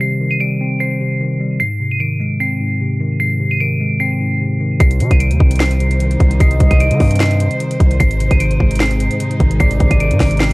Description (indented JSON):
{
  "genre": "hip hop, trap",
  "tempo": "150 BPM",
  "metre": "4/4",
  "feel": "half-time",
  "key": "unclear",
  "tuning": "A4 = 440 Hz",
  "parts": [
    { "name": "glassy synth bell", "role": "melody", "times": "0.0-10.5 s", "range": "C7 to Eb7", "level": "-21 LUFS", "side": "right 1 dB", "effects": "chorus, tape echo" },
    { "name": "mellow tine electric piano", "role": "accompaniment", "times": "0.0-10.5 s", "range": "Ab2 to C5", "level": "-18 LUFS", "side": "equal", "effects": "none" },
    { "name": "dark symphonic string section", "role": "sustained chords", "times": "4.8-10.5 s", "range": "C3 to C5", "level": "-26 LUFS", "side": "equal", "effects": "none" },
    { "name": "distorted 808-style bass", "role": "bass", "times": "4.8-10.5 s", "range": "Ab1 to Eb3", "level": "-15 LUFS", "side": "equal", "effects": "distortion" },
    { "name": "trap drum kit", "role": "drums", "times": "4.8-10.5 s", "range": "handclaps, hi-hat, kick drum, snare drum", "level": "-14 LUFS", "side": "equal", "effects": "none" },
    { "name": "soft octave-layered synth lead", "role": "second line", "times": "6.4-10.5 s", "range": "D5 to Eb5", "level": "-24 LUFS", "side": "equal", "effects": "chorus, tape echo" }
  ],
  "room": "little or no reverb",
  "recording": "dry, gritty hardware recording, cassette tape",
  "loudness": "-12 LUFS",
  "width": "side -24 dB against mid",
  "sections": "0.0-10.5 A section",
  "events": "none",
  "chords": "0.0 Cm; 1.6 Ab; 4.8 Cm; 8.0 Ab",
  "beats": "| 0.00 0.40 0.80 1.20 | 1.60 2.00 2.40 2.80 | 3.20 3.60 4.00 4.40 | 4.80 5.20 5.60 6.00 | 6.40 6.80 7.20 7.60 | 8.00 8.40 8.80 9.20 | 9.60 10.00 10.40"
}